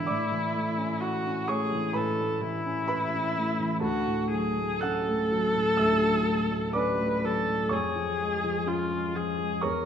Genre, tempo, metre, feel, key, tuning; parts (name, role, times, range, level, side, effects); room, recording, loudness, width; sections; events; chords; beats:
classical, romantic duo for viola and grand piano; 63 BPM; 4/4; rubato; A4 = 439 Hz
dark viola; melody; 0.0-9.9 s; E4 to B4; -28 LUFS; left 1 dB
dark baby grand piano; accompaniment; 0.0-9.9 s; D2 to F#6; -28 LUFS; equal
wet recital hall reverb, RT60 1.4 s; -25 LUFS; side -8 dB against mid
0.0-9.9 A section
0.1 A; 3.8 Dmaj7; 7.7 C#/E#
| 0.06 1.00 1.93 2.87 | 3.81 4.81 5.78 6.74 | 7.71 8.67 9.62